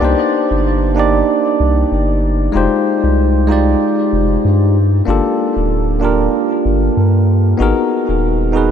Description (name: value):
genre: sunset chillout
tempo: 95 BPM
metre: 4/4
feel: swing 55% on 16ths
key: C minor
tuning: A4 = 440 Hz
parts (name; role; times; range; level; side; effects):
- bell-like tine electric piano; accompaniment; 0.0-8.7 s; Ab3 to D5; -14 LUFS; moving between left 5 dB and right 5 dB; auto-pan, ping-pong delay
- round analog bass; bass; 0.0-8.7 s; D1 to G2; -15 LUFS; equal; none
room: moderate huge ambient reverb, RT60 7.4 s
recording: dreamy mix soaked in reverb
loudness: -12 LUFS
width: side -8 dB against mid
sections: 0.0-8.7 A section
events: none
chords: 0.0 Cm9; 2.5 Fm9; 4.8 Gm9; 7.6 Abm9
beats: | 0.02 0.65 1.28 1.92 | 2.55 3.18 3.81 4.44 | 5.08 5.71 6.34 6.97 | 7.60 8.23